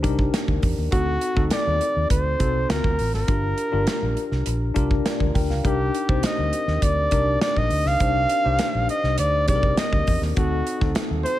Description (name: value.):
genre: polished 1980s jazz-funk pop.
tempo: 102 BPM.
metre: 4/4.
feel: straight.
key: unclear.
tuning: A4 = 437 Hz.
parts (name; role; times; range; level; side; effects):
mellow tine electric piano; accompaniment; 0.0-11.4 s; C4 to G5; -27 LUFS; left 4 dB; medium stereo tremolo, wide subtle chorus.
vintage muted fingered electric bass; bass; 0.0-11.2 s; G1 to E2; -24 LUFS; equal; none.
modern studio drum kit; drums; 0.0-11.4 s; hi-hat, kick drum, snare drum; -24 LUFS; equal; gated reverb.
warm flugelhorn; melody; 0.9-11.4 s; F#4 to F5; -24 LUFS; right 1 dB; none.
room: studio ambience.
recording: none.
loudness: -19 LUFS.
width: side -14 dB against mid.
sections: 0.0-11.4 A section.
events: none.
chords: 0.0 Cm9; 0.9 D7b9; 2.7 D7alt; 3.3 Gm7; 5.6 Cm9; 10.4 D7b9.